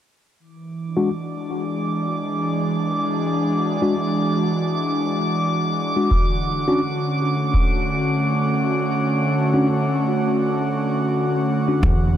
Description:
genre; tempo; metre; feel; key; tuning
ambient dub; 84 BPM; 4/4; swing 59% on 16ths; E mixolydian; A4 = 438 Hz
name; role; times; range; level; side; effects
airy breathy pad; sustained chords; 0.4-12.2 s; D3 to F#4; -21 LUFS; equal; chorus
drifting glass-harmonics texture; texture; 1.1-11.8 s; D6; -27 LUFS; equal; chorus, built-in reverb
mellow tine electric piano; stabs; 1.0-11.8 s; G#3 to F#4; -24 LUFS; left 2 dB; slow stereo tremolo, low-pass filter, dub echo
electronic kick drum; drums; 6.1-12.0 s; none; -20 LUFS; equal; none
upright bass; bass; 11.8-12.2 s; E2; -18 LUFS; equal; none
room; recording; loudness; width
light reverb, digital ambience; none; -19 LUFS; side -10 dB against mid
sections
0.4-11.8 A section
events
filter sweep on tine electric piano 0.4-11.8; kick drops out 9.0-11.8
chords
0.4 E9; 6.1 Dmaj7

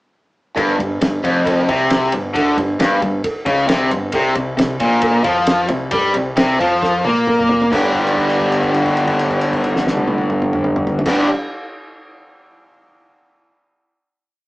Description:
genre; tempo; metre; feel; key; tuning
classic rock; 134 BPM; 4/4; straight; G major; A4 = 442 Hz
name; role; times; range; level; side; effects
cranked stack guitar; riff; 0.6-11.3 s; F2 to Bb3; -20 LUFS; right 1 dB; overdrive
overdriven electric guitar; riff; 0.6-11.3 s; F2 to G4; -17 LUFS; left 1 dB; none
growling FM bass; bass; 0.6-11.2 s; F1 to Bb2; -25 LUFS; equal; none
cloth-damped thuddy drum kit; drums; 0.6-11.2 s; crash cymbal, kick drum, ride cymbal, snare drum, toms; -23 LUFS; equal; none
cowbell; percussion; 0.6-7.9 s; none; -27 LUFS; right 1 dB; none
room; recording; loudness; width
moderate studio reverb, RT60 0.6 s; band playing live in one room, small speaker sound; -14 LUFS; side -19 dB against mid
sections
0.6-7.7 riff; 7.7-11.3 final chord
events
drum fill 6.8-7.7; held note 7.7-11.1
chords
0.6 G5; 4.1 C5; 7.7 G

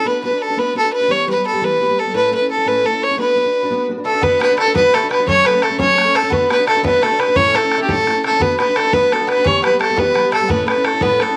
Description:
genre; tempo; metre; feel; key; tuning
celtic folk, Celtic jig; 115 BPM (dotted quarters); 6/8; straight; B minor; A4 = 440 Hz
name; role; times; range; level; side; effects
rich fiddle; melody; 0.0-11.4 s; G4 to C#5; -17 LUFS; equal; none
mellow wooden flute; second line; 0.0-11.4 s; A5 to C#6; -28 LUFS; equal; none
fingerpicked steel-string acoustic guitar; accompaniment; 0.0-11.4 s; A2 to B4; -25 LUFS; equal; none
Irish bouzouki; second line; 4.0-11.3 s; A3 to C#4; -30 LUFS; equal; none
bodhran; percussion; 4.2-11.3 s; none; -25 LUFS; equal; none
room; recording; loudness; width
light reverb, small room ambience; none; -16 LUFS; mono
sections
0.0-4.2 A section; 4.2-11.4 A section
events
none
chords
0.0 Bm; 1.1 Em; 2.1 A; 3.2 Bm; 5.3 F#m; 6.3 Bm; 7.4 A; 8.4 Bm; 9.4 Em; 10.5 A

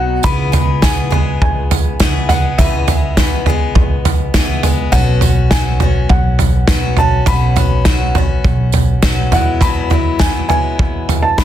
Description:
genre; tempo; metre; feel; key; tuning
indie folk with a building arrangement; 102 BPM; 4/4; straight; unclear; A4 = 440 Hz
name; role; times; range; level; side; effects
dark upright piano; melody; 0.0-11.4 s; E5 to B5; -20 LUFS; right 1 dB; none
picked steel-string acoustic guitar; accompaniment; 0.0-11.4 s; E2 to G#4; -21 LUFS; left 5 dB; none
upright bass; bass; 0.0-11.4 s; B1 to E2; -17 LUFS; equal; none
loose indie drum kit; drums; 0.2-11.4 s; kick drum, snare drum, toms; -14 LUFS; right 1 dB; none
tambourine; percussion; 0.2-11.4 s; none; -28 LUFS; right 18 dB; none
room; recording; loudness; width
studio reverb; dense, heavily limited modern master; -11 LUFS; side -11 dB against mid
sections
0.2-11.4 A section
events
none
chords
0.2 C#m7; 4.9 Bsus2; 9.3 Eadd9

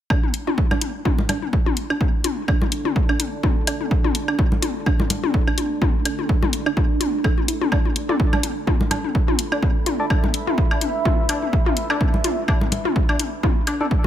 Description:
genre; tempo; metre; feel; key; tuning
minimal techno; 126 BPM; 4/4; swing 56% on 16ths; unclear; A4 = 440 Hz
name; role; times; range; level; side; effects
resonant blip pluck; riff; 0.1-14.1 s; D4 to A4; -28 LUFS; right 4 dB; chorus, sidechain pumping, digital delay
electronic kick drum; drums; 0.1-14.0 s; none; -20 LUFS; equal; small room reverb
electronic woodblock, toms and congas; percussion; 0.1-14.1 s; none; -25 LUFS; left 5 dB; overdrive, small room reverb
deep dark ambient pad; texture; 1.5-14.1 s; D4 to B5; -29 LUFS; right 3 dB; chorus, built-in reverb, sidechain pumping
electronic hi-hat; drums; 0.3-13.8 s; none; -25 LUFS; left 3 dB; small room reverb
percussive organ stab; stabs; 8.1-13.9 s; D4 to D5; -28 LUFS; equal; chorus, digital delay
room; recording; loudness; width
light reverb; none; -18 LUFS; side -11 dB against mid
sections
0.1-14.1 A section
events
filter sweep on synth pluck 0.1-14.1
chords
0.1 D5

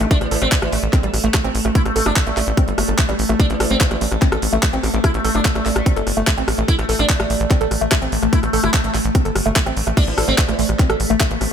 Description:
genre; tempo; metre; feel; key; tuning
psychedelic trance; 146 BPM; 4/4; straight; A minor; A4 = 440 Hz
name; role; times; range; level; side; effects
vowel-sweep wobble bass; second line; 0.0-0.1, 4.8-6.1, 11.4-11.5 s; A3 to D4; -34 LUFS; left 5 dB; none
overtone-sweeping drone; sustained chords; 0.0-11.5 s; A3; -25 LUFS; equal; chorus, built-in reverb, phaser, sidechain pumping
woody wave-folded pluck; riff; 0.0-11.4 s; G3 to A4; -24 LUFS; moving between left 5 dB and right 5 dB; chorus, auto-pan, sidechain pumping, digital delay
tight sequencer bass; bass; 0.0-11.5 s; G1 to A1; -22 LUFS; equal; none
garage drum kit; drums; 0.0-11.5 s; crash cymbal, handclaps, hi-hat, rim click; -22 LUFS; equal; none
sitar; melody; 0.1-10.5 s; E3 to E4; -24 LUFS; right 1 dB; phaser, sidechain pumping, ping-pong delay
electronic kick drum; drums; 0.1-11.3 s; none; -18 LUFS; equal; none
room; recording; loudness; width
little or no reverb; none; -15 LUFS; side -8 dB against mid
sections
0.0-11.5 A section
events
none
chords
0.0 A5

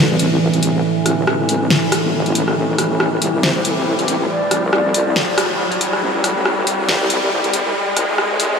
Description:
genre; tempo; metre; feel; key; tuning
deep dubstep; 139 BPM; 4/4; swing 57% on 16ths, half-time; A minor; A4 = 440 Hz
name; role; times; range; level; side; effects
overtone-sweeping drone; sustained chords; 0.0-8.6 s; A2 to G3; -20 LUFS; right 1 dB; chorus, built-in reverb
wobble bass; bass; 0.0-8.6 s; G1 to C2; -21 LUFS; left 1 dB; chorus, tube saturation, high-pass filter
riser; sound effects; 0.4-8.6 s; none; -23 LUFS; equal; none
deep house drum kit; drums; 0.2-8.5 s; hi-hat, rim click, snare drum; -19 LUFS; left 1 dB; none
breathy mellow low ney; melody; 3.4-5.2 s; C5 to D5; -26 LUFS; equal; low-pass filter, dub echo
room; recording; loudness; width
wet huge ambient reverb, RT60 6.4 s; dreamy mix soaked in reverb, high-pass filter; -14 LUFS; side -6 dB against mid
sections
0.0-8.6 A section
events
build-up 0.0-8.6; filter sweep on ney 0.0-8.6; filter sweep 0.0-8.6; riser 0.4-8.6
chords
0.0 Am

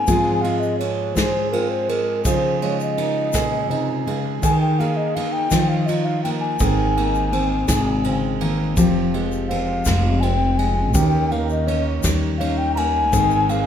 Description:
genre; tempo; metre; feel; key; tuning
acoustic folk duo or small band; 55 BPM (dotted quarters); 6/8; straight; Ab major; A4 = 442 Hz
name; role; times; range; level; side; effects
mellow alto ocarina; melody; 0.0-13.7 s; Bb4 to Bb5; -23 LUFS; left 2 dB; none
fingerpicked steel-string acoustic guitar; accompaniment; 0.0-13.7 s; Ab2 to Ab4; -23 LUFS; left 2 dB; none
warm upright piano; arpeggios; 0.0-13.7 s; Eb3 to Ab4; -25 LUFS; right 6 dB; none
soft brush drum kit; drums; 0.1-13.7 s; kick drum, ride cymbal, snare drum; -27 LUFS; right 1 dB; none
egg shaker; percussion; 0.1-13.6 s; none; -32 LUFS; left 8 dB; none
upright bass; bass; 6.6-13.7 s; F1 to Eb2; -22 LUFS; equal; none
room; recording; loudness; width
moderate large studio reverb, RT60 1.2 s; none; -18 LUFS; side -9 dB against mid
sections
0.0-13.7 A section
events
ocarina solo 0.0-13.7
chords
0.1 Fm/Ab; 2.3 Dbadd9; 4.4 Ebsus4; 5.5 Ebsus2; 6.6 Abadd9; 8.8 Fmadd9; 10.9 Eb7; 13.1 Ab

